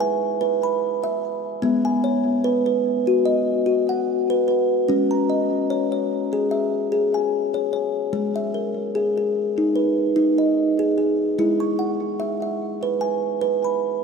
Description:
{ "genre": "world meditative, meditative tuned percussion", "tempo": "74 BPM", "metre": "4/4", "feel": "swing 55% on 16ths", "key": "unclear", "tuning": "A4 = 440 Hz", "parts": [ { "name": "kalimba", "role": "solo", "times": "0.0-14.0 s", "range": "G#3 to C#6", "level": "-19 LUFS", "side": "equal", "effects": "ping-pong delay" } ], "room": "wet cathedral reverb, RT60 6.0 s", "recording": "none", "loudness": "-19 LUFS", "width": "side -5 dB against mid", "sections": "0.0-14.0 A section", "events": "none", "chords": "0.0 E/G#; 1.6 B/G#; 4.9 C#m/G#; 11.4 E/G#" }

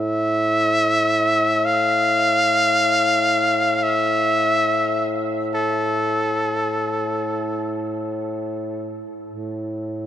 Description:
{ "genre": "caucasian folk, Caucasian lament", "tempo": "free time", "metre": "none", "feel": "none", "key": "unclear", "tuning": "A4 = 436 Hz", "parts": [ { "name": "trumpet with straight mute", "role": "melody", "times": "0.0-7.9 s", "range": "A4 to F5", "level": "-18 LUFS", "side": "equal", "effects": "none" }, { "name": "mellow duduk", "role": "drone", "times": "0.0-10.1 s", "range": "A2", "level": "-24 LUFS", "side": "equal", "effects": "none" } ], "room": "moderate cathedral reverb, RT60 6.7 s", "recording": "none", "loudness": "-18 LUFS", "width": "side -11 dB against mid", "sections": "0.0-9.3 A section", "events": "none", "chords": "none" }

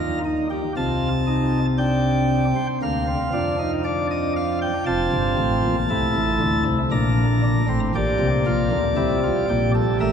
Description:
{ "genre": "classical, baroque-style 4-part fugue for pipe organ", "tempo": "58 BPM", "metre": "4/4", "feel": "straight", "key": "Bb major", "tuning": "A4 = 439 Hz", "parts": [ { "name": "chamber organ, principal chorus", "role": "solo", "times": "0.0-10.1 s", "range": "F1 to Bb5", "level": "-19 LUFS", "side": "equal", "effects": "none" } ], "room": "wet cathedral reverb, RT60 4.8 s", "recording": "minimal, uncompressed stereo recording", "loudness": "-19 LUFS", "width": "side -7 dB against mid", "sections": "0.0-10.1 A section", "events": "none", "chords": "0.0 Eb; 0.8 F7/C; 2.8 Bb/D; 4.9 F; 6.9 Bb; 9.0 C7" }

